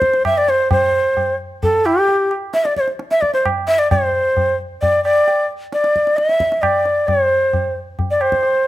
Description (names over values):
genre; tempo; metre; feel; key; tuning
indian classical, Hindustani; 132 BPM; 7/4; straight; unclear; A4 = 442 Hz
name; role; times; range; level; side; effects
breathy bright bansuri; melody; 0.0-8.7 s; G4 to E5; -15 LUFS; equal; none
tabla; percussion; 0.0-8.6 s; none; -22 LUFS; right 1 dB; none
room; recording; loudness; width
light reverb; close, detailed microphones; -14 LUFS; side -15 dB against mid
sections
0.0-3.9 A section; 3.9-8.7 B section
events
none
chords
none